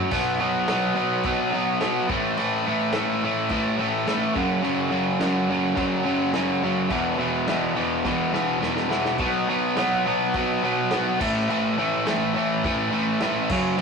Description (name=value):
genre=garage rock duo or trio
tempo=106 BPM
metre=4/4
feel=straight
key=unclear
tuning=A4 = 441 Hz
part: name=crunchy overdriven guitar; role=riff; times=0.0-13.8 s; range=E2 to B3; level=-21 LUFS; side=equal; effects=none
part: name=vintage drum kit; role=drums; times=0.1-13.8 s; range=crash cymbal, kick drum, snare drum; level=-33 LUFS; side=equal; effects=none
room=moderate studio ambience, RT60 0.5 s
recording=rough rehearsal-room recording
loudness=-21 LUFS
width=side -5 dB against mid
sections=0.1-13.8 A section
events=drum fill 8.0-9.2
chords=0.1 B5; 2.1 A5; 4.3 F#5; 6.9 E5; 9.2 B5; 11.2 A5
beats=| 0.12 0.68 1.25 1.81 | 2.37 2.93 3.50 4.06 | 4.63 5.19 5.76 6.32 | 6.89 7.46 8.03 8.60 | 9.18 9.75 10.33 10.90 | 11.48 12.05 12.63 13.20 | 13.78